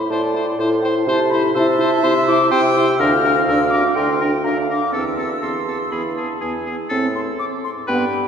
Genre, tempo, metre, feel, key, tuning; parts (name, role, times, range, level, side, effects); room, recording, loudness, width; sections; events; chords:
quick classical-period movement for wind quintet; 124 BPM; 4/4; straight; A minor; A4 = 440 Hz
mellow concert flute; melody; 0.0-8.3 s; G5 to F6; -23 LUFS; left 5 dB
mellow bassoon; bass; 0.0-8.3 s; D2 to C3; -21 LUFS; right 1 dB
bright oboe; second line; 0.1-8.0 s; G#4 to C5; -26 LUFS; left 2 dB
clear clarinet; accompaniment; 0.1-8.3 s; C5 to C6; -24 LUFS; right 4 dB
mellow French horn; accompaniment; 0.1-8.1 s; B3 to E4; -22 LUFS; equal
wet cathedral reverb, RT60 4.5 s; heard from further back in the room; -16 LUFS; side -7 dB against mid
0.0-8.3 A section
0.0 Am; 1.1 Am/C; 3.0 Bb/D; 4.9 Am/E; 5.9 E; 6.9 Am